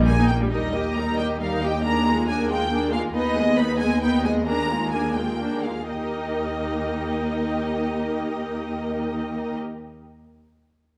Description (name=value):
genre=quick classical-period movement for string orchestra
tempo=80-93 BPM (dotted quarters)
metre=6/8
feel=straight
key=Eb major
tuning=A4 = 442 Hz
part: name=rich symphonic viola section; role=accompaniment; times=0.0-9.6 s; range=G3 to G4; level=-29 LUFS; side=equal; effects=none
part: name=rich symphonic cello section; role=bass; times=0.0-9.6 s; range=Eb2 to Bb2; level=-30 LUFS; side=equal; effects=none
part: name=rich symphonic double bass section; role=bass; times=0.0-9.6 s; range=Bb1 to Eb2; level=-33 LUFS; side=equal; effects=none
part: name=rich symphonic violin section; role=melody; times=0.1-9.6 s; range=Eb5 to Cb6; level=-32 LUFS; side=equal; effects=none
part: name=dark symphonic violin section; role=second line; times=0.5-9.6 s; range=F4 to Eb5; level=-31 LUFS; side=equal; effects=none
room=moderate recital hall reverb, RT60 1.5 s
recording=none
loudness=-24 LUFS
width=mono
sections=0.5-5.9 A section; 5.9-8.8 B section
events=slowing down 2.5-5.9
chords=0.0 Eb; 1.8 Bb7/Eb; 3.1 Abm/Eb; 4.5 Bb7/Eb; 5.9 Eb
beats=| 0.52 1.18 | 1.84 2.49 | 3.14 3.79 | 4.47 5.17 | 5.90 6.63 | 7.35 8.08